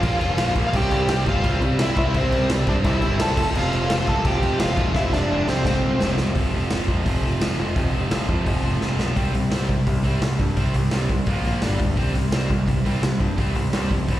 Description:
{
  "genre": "punk rock",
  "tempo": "171 BPM",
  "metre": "4/4",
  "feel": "straight",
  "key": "C mixolydian",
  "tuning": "A4 = 440 Hz",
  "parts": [
    { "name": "smooth overdriven lead guitar", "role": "melody", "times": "0.0-6.1 s", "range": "C4 to A5", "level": "-24 LUFS", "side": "equal", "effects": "slapback echo, ping-pong delay" },
    { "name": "distorted electric guitar", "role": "riff", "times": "0.0-14.2 s", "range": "E2 to C4", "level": "-28 LUFS", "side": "right 8 dB", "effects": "distortion" },
    { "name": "high-gain distorted guitar", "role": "riff", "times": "0.0-6.2, 9.2-14.2 s", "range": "F2 to D5", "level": "-33 LUFS", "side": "equal", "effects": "none" },
    { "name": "tight distorted guitar", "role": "riff", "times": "0.0-14.2 s", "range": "E2 to C4", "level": "-30 LUFS", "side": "left 8 dB", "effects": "distortion, slapback echo" },
    { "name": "growling picked electric bass", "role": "bass", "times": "0.0-14.2 s", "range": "E1 to C3", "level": "-24 LUFS", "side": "equal", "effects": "overdrive" },
    { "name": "raw garage drum kit", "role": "drums", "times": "0.0-14.2 s", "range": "crash cymbal, hi-hat, kick drum, snare drum", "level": "-24 LUFS", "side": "equal", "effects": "none" }
  ],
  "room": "small room ambience",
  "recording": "live gig heard through the venue's PA, recital hall reverb",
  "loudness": "-19 LUFS",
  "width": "side -14 dB against mid",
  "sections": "0.0-6.4 A section; 6.4-9.2 B section; 9.2-14.2 C section",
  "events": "drum fill 5.0-6.4, 8.8-9.2",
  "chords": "0.0 Bb; 0.7 C; 3.4 F; 6.4 F5; 9.2 C; 11.3 Bb5; 11.6 G5; 12.0 C"
}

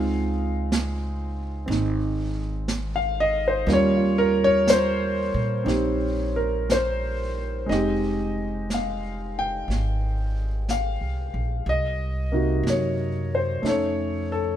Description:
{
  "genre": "jazz ballad",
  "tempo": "60 BPM",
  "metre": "4/4",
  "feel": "swing 67% on 8ths",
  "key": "F minor from 7.7 s",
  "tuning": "A4 = 440 Hz",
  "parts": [
    { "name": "warm concert grand piano", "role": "accompaniment", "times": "0.0-14.6 s", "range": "C3 to G5", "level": "-23 LUFS", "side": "equal", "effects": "none" },
    { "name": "upright bass", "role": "bass", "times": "0.0-14.6 s", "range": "F1 to Bb2", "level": "-28 LUFS", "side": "equal", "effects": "none" },
    { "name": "vintage brush drum kit", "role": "drums", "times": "0.7-14.6 s", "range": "brushed snare drum, hi-hat, snare drum", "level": "-29 LUFS", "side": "right 4 dB", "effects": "none" }
  ],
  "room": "little or no reverb",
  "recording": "minimal, uncompressed stereo recording",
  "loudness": "-22 LUFS",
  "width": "side -10 dB against mid",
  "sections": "0.0-7.7 A section; 7.7-14.6 B section",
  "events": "none",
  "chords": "0.0 Dbmaj7; 3.7 Eb9; 7.7 Fm9; 11.7 Cm7b5; 13.6 Faug7"
}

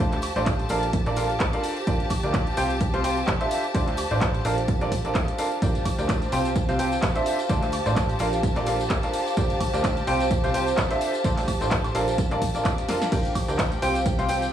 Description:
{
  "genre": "piano house",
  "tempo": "128 BPM",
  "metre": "4/4",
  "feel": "swing 56% on 16ths",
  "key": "unclear",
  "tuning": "A4 = 439 Hz",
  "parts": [
    { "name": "rich studio string section", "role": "sustained chords", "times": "0.0-14.5 s", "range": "G4 to A5", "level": "-33 LUFS", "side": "equal", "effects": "sidechain pumping" },
    { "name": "clear upright piano", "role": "riff", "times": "0.0-14.4 s", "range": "C4 to G5", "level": "-27 LUFS", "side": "right 1 dB", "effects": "sidechain pumping, tape echo" },
    { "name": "plucky analog bass", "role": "bass", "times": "0.0-14.5 s", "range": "F1 to D2", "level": "-30 LUFS", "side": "equal", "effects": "sidechain pumping" },
    { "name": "electronic kick drum", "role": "drums", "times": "0.0-14.2 s", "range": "none", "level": "-25 LUFS", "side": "equal", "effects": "cassette tape" },
    { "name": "warbly tape-like pad", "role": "texture", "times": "0.0-14.5 s", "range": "G4 to A5", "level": "-31 LUFS", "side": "equal", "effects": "chorus, built-in reverb, sidechain pumping" },
    { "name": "punchy analog drum machine", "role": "drums", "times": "0.1-14.5 s", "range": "crash cymbal, handclaps, hi-hat, ride cymbal, snare drum, tambourine, woodblock", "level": "-32 LUFS", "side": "right 1 dB", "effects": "cassette tape" },
    { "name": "tambourine", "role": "percussion", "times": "0.1-14.5 s", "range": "none", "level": "-43 LUFS", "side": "left 13 dB", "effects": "none" }
  ],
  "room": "light reverb, digital ambience",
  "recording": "home recording on cassette, studio ambience",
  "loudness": "-22 LUFS",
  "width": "side -10 dB against mid",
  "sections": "0.0-14.5 A section",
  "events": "drum fill 12.9",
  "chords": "0.0 Dm7; 0.7 Bbmaj7; 1.9 Gm7; 2.6 Csus4; 3.5 Dm7; 4.4 Bbmaj7; 5.6 Gm7; 6.3 Csus4; 7.3 Dm7; 8.2 Bbmaj7; 9.4 Gm7; 10.1 Csus4; 11.0 Dm7; 11.9 Bbmaj7; 13.1 Gm7; 13.8 Csus4"
}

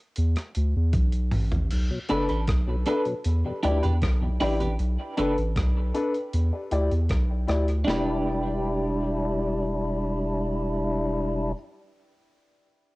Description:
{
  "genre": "dub reggae",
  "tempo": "78 BPM",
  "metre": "4/4",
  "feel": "straight",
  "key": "E minor",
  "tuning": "A4 = 438 Hz",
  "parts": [
    { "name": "soft dub sub bass", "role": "bass", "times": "0.2-11.5 s", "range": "E1 to E2", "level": "-25 LUFS", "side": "equal", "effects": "none" },
    { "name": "breakbeat sampler-style drum kit", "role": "drums", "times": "0.2-8.1 s", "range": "crash cymbal, hi-hat, kick drum, rim click, snare drum, toms", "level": "-29 LUFS", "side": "equal", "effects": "cassette tape" },
    { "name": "tonewheel organ", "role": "accompaniment", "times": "1.9-11.5 s", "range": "E2 to E4", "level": "-28 LUFS", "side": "left 1 dB", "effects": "slow rotary speaker, cassette tape, plate reverb" },
    { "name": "clean electric guitar", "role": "accompaniment", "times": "2.1-11.6 s", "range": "D4 to B4", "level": "-32 LUFS", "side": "right 2 dB", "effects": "tremolo, cassette tape, dub echo, plate reverb" },
    { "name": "dark upright piano", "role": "stabs", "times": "2.1-11.5 s", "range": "D4 to D5", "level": "-30 LUFS", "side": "left 2 dB", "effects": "cassette tape, dub echo, plate reverb" }
  ],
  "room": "light reverb",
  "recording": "home recording on cassette",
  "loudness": "-23 LUFS",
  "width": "side -21 dB against mid",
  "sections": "0.0-1.7 A section; 1.7-7.9 B section; 7.9-10.9 C section",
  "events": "break 0.0-1.7; drum fill 0.9-1.7",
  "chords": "0.2 E5; 1.7 Bm7; 3.2 Em7; 4.8 Bm7; 6.3 Em7"
}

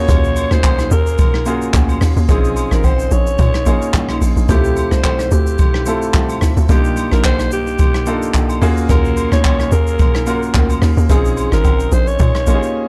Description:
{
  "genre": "amapiano",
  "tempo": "109 BPM",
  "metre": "4/4",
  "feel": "swing 55% on 16ths",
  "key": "unclear",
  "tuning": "A4 = 441 Hz",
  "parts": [
    { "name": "breathy alto saxophone", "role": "melody", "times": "0.0-12.9 s", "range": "G4 to Db5", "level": "-24 LUFS", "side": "equal", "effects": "tape echo" },
    { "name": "clear grand piano", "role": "accompaniment", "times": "0.0-12.9 s", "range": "A3 to Bb4", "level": "-23 LUFS", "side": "equal", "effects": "none" },
    { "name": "tight log drum bass", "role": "bass", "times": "0.0-12.6 s", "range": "Ab1 to Bb2", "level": "-18 LUFS", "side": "equal", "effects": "none" },
    { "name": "jazz brush drum kit", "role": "drums", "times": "0.1-12.7 s", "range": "handclaps, hi-hat, kick drum, rim click, shaker", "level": "-19 LUFS", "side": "equal", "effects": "none" },
    { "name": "agogo bells and woodblock", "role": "percussion", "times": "0.1-12.6 s", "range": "none", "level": "-31 LUFS", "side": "equal", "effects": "none" }
  ],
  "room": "studio reverb",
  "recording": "dark, warm production",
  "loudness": "-15 LUFS",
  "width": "mono",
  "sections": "0.0-12.9 A section",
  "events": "none",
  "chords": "0.0 Ebm11; 2.3 Bbm11; 4.5 Dm11; 6.7 Cm11; 8.6 Ebm11; 11.1 Bbm11"
}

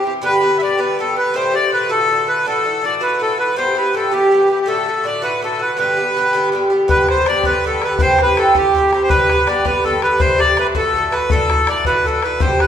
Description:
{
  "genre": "celtic folk, Celtic jig",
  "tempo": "108 BPM (dotted quarters)",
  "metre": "6/8",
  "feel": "straight",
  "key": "G major",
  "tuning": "A4 = 440 Hz",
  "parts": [
    { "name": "accordion", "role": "melody", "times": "0.0-12.7 s", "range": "G4 to E5", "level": "-15 LUFS", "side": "equal", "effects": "none" },
    { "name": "Irish bouzouki", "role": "accompaniment", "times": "0.0-12.7 s", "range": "G2 to G4", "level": "-19 LUFS", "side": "right 1 dB", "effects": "none" },
    { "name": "bodhran", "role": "percussion", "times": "6.9-12.7 s", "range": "none", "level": "-21 LUFS", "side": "left 2 dB", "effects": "none" }
  ],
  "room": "wet recital hall reverb, RT60 1.7 s",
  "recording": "recorded in a church or concert hall",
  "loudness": "-13 LUFS",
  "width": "side -9 dB against mid",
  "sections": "0.0-6.9 A section; 6.9-12.7 A section",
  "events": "none",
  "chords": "0.2 G; 1.3 Dsus4; 1.9 D; 2.5 Dadd9; 3.6 Em; 4.7 D; 5.8 G; 8.0 C; 9.1 G; 10.2 Dsus4; 10.8 D; 11.3 Dadd9"
}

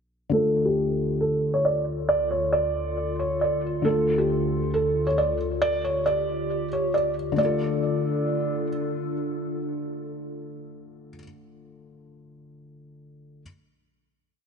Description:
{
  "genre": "hip hop, trap",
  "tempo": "136 BPM",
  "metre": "4/4",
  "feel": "half-time",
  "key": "D minor",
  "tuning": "A4 = 440 Hz",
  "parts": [
    { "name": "felt-muted upright piano", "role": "melody", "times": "0.3-8.7 s", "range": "G4 to D5", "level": "-24 LUFS", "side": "right 1 dB", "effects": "low-pass filter, ping-pong delay" },
    { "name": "felt-muted upright piano", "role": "accompaniment", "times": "0.3-13.4 s", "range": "D3 to A4", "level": "-29 LUFS", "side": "left 3 dB", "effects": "low-pass filter" },
    { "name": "warbly tape-like pad", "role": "sustained chords", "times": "0.6-11.2 s", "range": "D2 to A4", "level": "-30 LUFS", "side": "equal", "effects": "chorus, built-in reverb, low-pass filter" }
  ],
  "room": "moderate lush hall reverb, RT60 2.3 s",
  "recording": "nothing above 10.9 kHz",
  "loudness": "-22 LUFS",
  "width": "side -6 dB against mid",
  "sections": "0.3-7.4 breakdown; 7.4-10.9 final chord",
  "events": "filter sweep 0.3-7.4",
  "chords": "0.3 Dm"
}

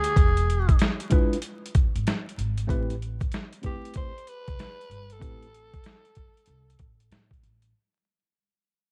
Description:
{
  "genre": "hip hop, jazz-hop",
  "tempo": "95 BPM",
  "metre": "4/4",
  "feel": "swing 64% on 16ths",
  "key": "A minor",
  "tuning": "A4 = 441 Hz",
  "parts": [
    { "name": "growling alto saxophone", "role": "melody", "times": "0.0-7.0 s", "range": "G4 to C5", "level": "-34 LUFS", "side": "equal", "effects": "analog delay" },
    { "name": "upright bass", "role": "bass", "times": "0.0-7.7 s", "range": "E1 to A2", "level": "-30 LUFS", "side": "equal", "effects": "none" },
    { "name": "boom bap sampler-style drum kit", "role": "drums", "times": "0.0-7.7 s", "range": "hi-hat, kick drum, snare drum", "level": "-26 LUFS", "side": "equal", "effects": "none" },
    { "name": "mellow tine electric piano", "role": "accompaniment", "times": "1.1-5.5 s", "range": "G#3 to B4", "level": "-34 LUFS", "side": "equal", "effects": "none" }
  ],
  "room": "studio reverb",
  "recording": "dark, warm production, vinyl crackle",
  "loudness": "-26 LUFS",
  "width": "mono",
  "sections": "0.0-7.7 A section",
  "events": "fade-out 0.0-7.7",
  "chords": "0.2 E7b9; 2.7 Am9"
}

